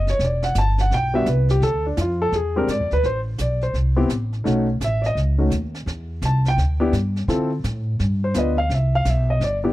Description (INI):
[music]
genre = jazz piano trio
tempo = 169 BPM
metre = 4/4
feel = swing 64% on 8ths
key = E minor, A minor from 3.0 s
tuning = A4 = 440 Hz
[part]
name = warm grand piano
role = melody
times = 0.0-9.7 s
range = G3 to A5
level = -22 LUFS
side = left 1 dB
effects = none
[part]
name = upright bass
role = bass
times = 0.0-9.7 s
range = E1 to D3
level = -21 LUFS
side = equal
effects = none
[part]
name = jazz brush drum kit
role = drums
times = 0.1-9.7 s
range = brushed snare drum, hi-hat, snare drum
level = -34 LUFS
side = right 2 dB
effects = none
[sound]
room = small room ambience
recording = dry, close 1970s-style studio recording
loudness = -18 LUFS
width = side -16 dB against mid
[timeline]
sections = 0.0-3.0 A section; 3.0-9.7 A section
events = grand piano solo 0.0-9.7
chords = 0.2 Em7; 1.6 Dm; 2.3 E7; 3.0 Am; 4.5 B7; 5.9 Em7; 7.3 Dm7; 8.0 G7; 8.7 Cmaj7